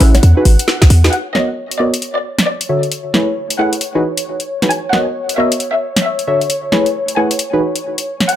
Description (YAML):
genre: UK garage, two-step garage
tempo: 134 BPM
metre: 4/4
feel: swing 63% on 16ths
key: unclear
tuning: A4 = 440 Hz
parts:
  - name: dark studio violin section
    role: melody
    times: 0.0-8.4 s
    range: B4 to G#5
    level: -20 LUFS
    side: left 1 dB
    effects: digital delay
  - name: warm analog pad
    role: sustained chords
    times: 0.0-8.4 s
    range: C#5 to F#5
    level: -24 LUFS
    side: left 1 dB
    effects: wide subtle chorus, sidechain pumping
  - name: deep mellow chord stab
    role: stabs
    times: 0.0-7.6 s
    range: D3 to F#5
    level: -17 LUFS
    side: equal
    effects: chorus, digital delay
  - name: short 808-style bass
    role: bass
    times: 0.0-1.1 s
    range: G#1 to E2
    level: -8 LUFS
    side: equal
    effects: none
  - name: garage drum kit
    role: drums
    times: 0.0-8.4 s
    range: bongos, hi-hat, snare drum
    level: -17 LUFS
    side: equal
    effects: none
  - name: electronic kick drum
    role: drums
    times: 0.8-0.9 s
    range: none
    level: -7 LUFS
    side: equal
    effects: none
room: light reverb, digital ambience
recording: none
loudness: -12 LUFS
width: side -11 dB against mid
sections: 0.0-1.1 A section; 1.1-8.4 B section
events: drum fill 0.7-1.1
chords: 0.2 Emaj9; 1.1 Bmaj9; 2.0 Dmaj9; 2.9 Amaj9; 3.8 Emaj9; 4.7 Bmaj9; 5.6 Dmaj9; 6.5 Amaj9; 7.4 Emaj9